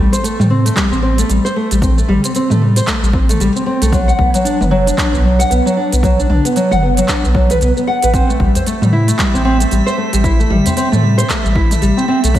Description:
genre	organic downtempo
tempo	114 BPM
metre	4/4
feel	swing 58% on 16ths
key	A dorian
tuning	A4 = 440 Hz
part	nylon-string guitar	arpeggios	0.0-12.4 s	F#3 to F#5	-15 LUFS	equal	tape echo, slapback echo
part	warm sub bass	bass	0.0-12.4 s	F#1 to A2	-15 LUFS	equal	sidechain pumping
part	organic electronic drum kit	drums	0.1-12.4 s	handclaps, hi-hat, shaker, toms	-20 LUFS	right 1 dB	overdrive
part	electronic kick drum	drums	0.8-12.4 s	none	-18 LUFS	equal	overdrive
part	drifting glass-harmonics texture	texture	8.5-12.4 s	E5	-25 LUFS	right 5 dB	chorus, built-in reverb
part	udu	percussion	8.6-10.7 s	none	-20 LUFS	equal	none
room	moderate lush hall reverb, RT60 2.0 s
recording	big arena sound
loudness	-11 LUFS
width	side -12 dB against mid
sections	0.0-12.4 A section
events	none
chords	0.0 Am7; 3.9 Bm; 8.1 Am7

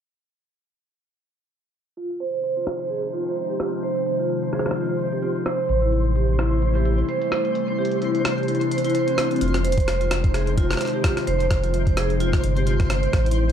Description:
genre	IDM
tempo	129 BPM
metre	4/4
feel	swing 56% on 16ths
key	F minor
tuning	A4 = 441 Hz
part	glassy FM pad	sustained chords	2.6-13.5 s	C3 to E4	-27 LUFS	left 3 dB	ensemble chorus, built-in reverb
part	vibraphone with medium hard mallets	arpeggios	2.0-13.5 s	C4 to C5	-24 LUFS	right 2 dB	low-pass filter, ping-pong delay
part	jungle sampler-style drum kit	drums	2.0-13.5 s	hi-hat, rim click	-29 LUFS	equal	low-pass filter on hats, studio reverb, low-pass filter on snare
part	twinkling granular texture	texture	2.2-13.5 s	C4 to C5	-33 LUFS	left 1 dB	built-in reverb
part	warm sub bass	bass	5.7-13.5 s	F1 to A1	-22 LUFS	equal	none
part	electronic kick drum	drums	9.8-13.2 s	none	-22 LUFS	equal	studio reverb
room	moderate plate reverb, RT60 1.0 s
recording	dark, warm production, low-pass filter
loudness	-20 LUFS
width	side -8 dB against mid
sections	2.0-9.4 A section; 9.4-13.5 B section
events	filter sweep on drum 2.0-9.4; filter sweep on ambient pad 2.0-9.4; filter sweep on vibraphone 2.0-9.4; filter sweep 2.0-9.4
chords	2.0 Fm7; 5.7 Am7; 9.4 Fm7

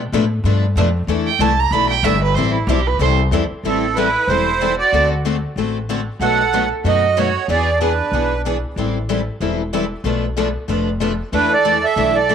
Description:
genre	acoustic string swing (jazz manouche)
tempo	188 BPM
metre	4/4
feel	swing 60% on 8ths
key	A minor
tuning	A4 = 439 Hz
part	upright bass	bass	0.0-12.3 s	E1 to B2	-21 LUFS	left 1 dB	none
part	picked steel-string acoustic guitar	accompaniment	0.1-12.3 s	B2 to A4	-22 LUFS	left 10 dB	none
part	picked swing-style acoustic guitar	accompaniment	0.1-12.3 s	B2 to B4	-27 LUFS	right 10 dB	none
part	rich violin	second line	1.3-8.4, 11.3-12.3 s	C4 to B5	-21 LUFS	right 8 dB	none
part	accordion	melody	3.6-8.4, 11.3-12.3 s	A4 to F#5	-17 LUFS	right 4 dB	light tremolo tuning
room	moderate spring reverb, RT60 1.6 s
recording	1960s-style stereo with parts hard left and right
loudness	-15 LUFS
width	side -8 dB against mid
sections	0.0-3.6 A section; 3.6-12.3 B section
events	violin solo 0.0-3.6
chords	0.0 Bm7b5; 1.1 E7sus4; 2.4 Am7; 3.6 Am9; 4.9 D7; 6.2 B7; 7.5 E7; 8.8 Am7; 10.0 Bm7b5; 11.3 E7sus4

